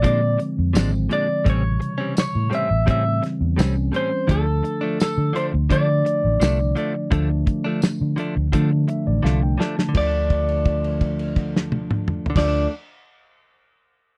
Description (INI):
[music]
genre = straight-eighth soul blues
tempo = 85 BPM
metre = 4/4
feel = straight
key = D minor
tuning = A4 = 440 Hz
[part]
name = electric guitar through a small old amp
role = melody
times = 0.0-12.7 s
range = A4 to E5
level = -26 LUFS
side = equal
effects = none
[part]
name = mellow tine electric piano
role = accompaniment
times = 0.0-12.7 s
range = B#2 to A5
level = -28 LUFS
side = equal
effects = none
[part]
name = direct-recorded clean electric guitar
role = stabs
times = 0.0-12.7 s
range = A2 to D4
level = -30 LUFS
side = equal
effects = none
[part]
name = vintage muted fingered electric bass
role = bass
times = 0.0-12.7 s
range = Ab1 to D3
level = -24 LUFS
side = equal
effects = none
[part]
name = damped 70s drum kit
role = drums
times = 0.0-12.5 s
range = crash cymbal, hi-hat, kick drum, snare drum, tambourine, toms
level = -24 LUFS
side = equal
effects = none
[sound]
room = little or no reverb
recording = dry, close 1970s-style studio recording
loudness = -21 LUFS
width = mono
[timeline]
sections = 0.0-9.9 A section; 9.9-12.8 B section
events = tine electric piano fill 8.5-9.9; drum fill 9.2-9.9; held note 9.9-12.4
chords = 0.0 Bb7; 1.5 A7#9; 4.3 Dm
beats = 0.05 0.76 | 1.46 2.17 2.88 3.58 | 4.29 5.00 5.71 6.41 | 7.12 7.83 8.54 9.24 | 9.95 10.66 11.36 12.07